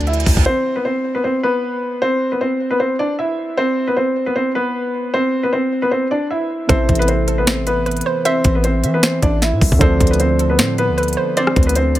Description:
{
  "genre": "hip hop, trap",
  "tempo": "154 BPM",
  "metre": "4/4",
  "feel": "half-time",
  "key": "unclear",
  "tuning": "A4 = 440 Hz",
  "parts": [
    { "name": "felt-muted upright piano", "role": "melody", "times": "0.0-12.0 s", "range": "B3 to E5", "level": "-17 LUFS", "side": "equal", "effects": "none" },
    { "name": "dark concert grand piano", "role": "accompaniment", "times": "0.0-0.5, 6.7-12.0 s", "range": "C3 to E4", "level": "-23 LUFS", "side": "right 2 dB", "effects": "none" },
    { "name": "hard-hitting 808-style bass", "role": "bass", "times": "0.0-0.5, 6.7-12.0 s", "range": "A1 to E3", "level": "-18 LUFS", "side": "equal", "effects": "none" },
    { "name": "trap drum kit", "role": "drums", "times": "0.0-0.5, 6.7-12.0 s", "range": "finger snaps, hi-hat, kick drum, rim click, snare drum", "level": "-17 LUFS", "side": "equal", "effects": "none" },
    { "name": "reverse cymbal", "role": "sound effects", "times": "0.0-0.5 s", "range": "none", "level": "-27 LUFS", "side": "right 7 dB", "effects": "none" },
    { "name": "hollow square pluck", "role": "second line", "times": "6.7-11.7 s", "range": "A4 to E5", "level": "-25 LUFS", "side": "right 4 dB", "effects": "chorus, digital delay" }
  ],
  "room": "digital ambience",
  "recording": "none",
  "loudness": "-15 LUFS",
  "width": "side -14 dB against mid",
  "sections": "0.5-12.0 A section",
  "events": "reverse cymbal 0.0-0.5",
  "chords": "0.5 Cmaj7/B; 6.7 Am; 9.8 Dm"
}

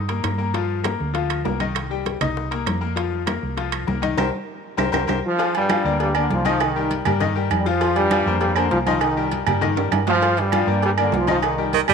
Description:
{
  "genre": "latin, salsa",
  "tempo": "198 BPM",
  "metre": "4/4",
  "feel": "straight",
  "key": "unclear",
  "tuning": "A4 = 440 Hz",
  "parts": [
    { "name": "bright grand piano", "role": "accompaniment", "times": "0.0-11.9 s", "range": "Eb3 to Eb6", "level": "-24 LUFS", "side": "left 10 dB", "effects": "none" },
    { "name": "hollow-body short-scale fingered electric bass", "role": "bass", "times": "0.0-11.9 s", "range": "C2 to G2", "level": "-26 LUFS", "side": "right 2 dB", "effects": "none" },
    { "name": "bongos and cowbell", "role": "percussion", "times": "0.1-11.9 s", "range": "none", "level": "-33 LUFS", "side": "left 10 dB", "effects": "none" },
    { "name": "congas", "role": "percussion", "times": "0.1-11.9 s", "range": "none", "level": "-29 LUFS", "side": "right 1 dB", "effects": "none" },
    { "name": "timbales and agogo bells", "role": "percussion", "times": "0.1-11.9 s", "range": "none", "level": "-26 LUFS", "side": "right 17 dB", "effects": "none" },
    { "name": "claves", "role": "percussion", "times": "0.2-11.9 s", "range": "none", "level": "-32 LUFS", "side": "right 16 dB", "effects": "none" },
    { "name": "bright trombone section", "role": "melody", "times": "5.3-11.7 s", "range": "G2 to F4", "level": "-22 LUFS", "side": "right 1 dB", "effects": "none" },
    { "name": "breathy baritone saxophone", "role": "second line", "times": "11.7-11.9 s", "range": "Eb3 to G3", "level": "-16 LUFS", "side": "right 15 dB", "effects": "none" }
  ],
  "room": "light reverb, studio reverb",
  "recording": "1960s-style stereo with parts hard left and right",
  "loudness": "-18 LUFS",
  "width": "side -6 dB against mid",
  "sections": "0.0-5.4 A section; 5.4-11.9 B section",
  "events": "band accent 4.2-5.4; drum fill 4.8-5.4, 9.8-10.2",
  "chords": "0.0 C7(no3) (rootless); 0.5 Gm7; 1.8 Cm7; 3.0 Fsus4; 4.2 C5; 5.4 Gm7; 6.6 Cm7; 7.8 Fsus4; 9.0 Cm7; 10.2 Gm7; 11.4 Cm7"
}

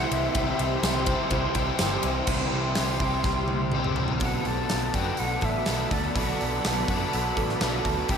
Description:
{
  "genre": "rock, shoegaze and dream pop",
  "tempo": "124 BPM",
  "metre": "4/4",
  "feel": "straight",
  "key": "unclear",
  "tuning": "A4 = 439 Hz",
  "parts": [
    { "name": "breathy mellow silver concert flute", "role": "melody", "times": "0.0-1.1, 4.2-8.2 s", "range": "D5 to A5", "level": "-34 LUFS", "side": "equal", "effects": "analog delay" },
    { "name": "soft string machine", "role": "sustained chords", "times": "0.0-8.2 s", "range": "G4 to C6", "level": "-33 LUFS", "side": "left 1 dB", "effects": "phaser, ensemble chorus" },
    { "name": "electric guitar through a small old amp", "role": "riff", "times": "0.0-8.2 s", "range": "B2 to C5", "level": "-31 LUFS", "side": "right 7 dB", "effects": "reverse reverb" },
    { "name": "overdriven electric guitar", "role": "riff", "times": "0.0-8.2 s", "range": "B2 to G4", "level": "-30 LUFS", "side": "left 6 dB", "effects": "ensemble chorus" },
    { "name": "vintage muted picked electric bass", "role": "bass", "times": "0.0-8.2 s", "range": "G1 to F#2", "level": "-31 LUFS", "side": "equal", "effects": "none" },
    { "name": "huge arena drum kit", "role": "drums", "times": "0.1-8.2 s", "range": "crash cymbal, hi-hat, kick drum, ride cymbal, snare drum, toms", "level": "-29 LUFS", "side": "equal", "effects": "none" },
    { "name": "tambourine", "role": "percussion", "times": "0.8-1.9 s", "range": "none", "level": "-41 LUFS", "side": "right 10 dB", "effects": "none" }
  ],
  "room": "wet lush hall reverb, RT60 1.7 s, small room ambience",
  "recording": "dreamy mix soaked in reverb",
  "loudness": "-23 LUFS",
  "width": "side -7 dB against mid",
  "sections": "0.0-2.3 A section; 2.3-4.2 B section; 4.2-8.2 C section",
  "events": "drum fill 3.3-4.2",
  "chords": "0.0 C; 4.2 Bm7"
}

